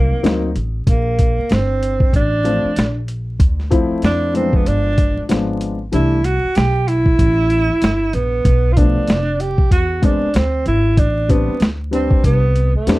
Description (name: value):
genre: hip hop, jazz-hop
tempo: 95 BPM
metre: 4/4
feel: swing 60% on 16ths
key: unclear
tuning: A4 = 440 Hz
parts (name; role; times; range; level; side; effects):
- breathy tenor saxophone; melody; 0.0-13.0 s; A3 to G4; -19 LUFS; right 2 dB; slapback echo
- dark upright piano; accompaniment; 0.0-13.0 s; E3 to B4; -20 LUFS; left 3 dB; none
- upright bass; bass; 0.0-13.0 s; F1 to F2; -19 LUFS; equal; none
- boom bap sampler-style drum kit; drums; 0.2-13.0 s; hi-hat, kick drum, snare drum; -16 LUFS; equal; none
room: little or no reverb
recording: dry, close 1970s-style studio recording, vinyl crackle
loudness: -14 LUFS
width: side -19 dB against mid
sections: 0.0-13.0 A section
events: kick muted 5.9-6.6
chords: 0.0 G#9 (rootless); 0.9 Bbmaj9; 3.4 Dm9; 4.7 G7b9; 5.9 C6; 8.4 Bm7b5; 9.7 E7b13; 11.0 Am11